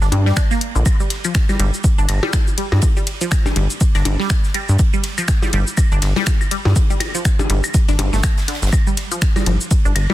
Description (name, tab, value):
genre	minimal techno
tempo	122 BPM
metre	4/4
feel	swing 58% on 16ths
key	G minor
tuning	A4 = 440 Hz
part	resonant blip pluck	riff	0.0-10.1 s	D3 to D4	-24 LUFS	equal	phaser, sidechain pumping, dub echo
part	rubbery square bass	bass	0.0-10.1 s	G1 to G2	-16 LUFS	equal	sidechain pumping
part	crisp fusion drum kit	drums	0.0-10.1 s	ride cymbal, snare drum	-32 LUFS	right 3 dB	sidechain pumping on cymbals, high-pass filter on cymbals, high-pass filter on snare, high-pass filter on room
part	punchy analog drum machine	drums	0.0-10.1 s	cabasa, finger snaps, hi-hat, ride cymbal	-25 LUFS	left 1 dB	overdrive, soft clipping on snare
part	percussion blips and claves	percussion	0.1-10.1 s	none	-26 LUFS	left 3 dB	dub echo
part	electronic kick drum	drums	0.4-9.8 s	none	-16 LUFS	equal	overdrive
room	little or no reverb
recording	dense, heavily limited modern master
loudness	-15 LUFS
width	side -15 dB against mid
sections	0.0-10.1 A section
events	none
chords	none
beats	0.37 | 0.86 1.35 1.84 2.33 | 2.83 3.32 3.81 4.30 | 4.79 5.28 5.78 6.27 | 6.76 7.25 7.74 8.23 | 8.73 9.22 9.71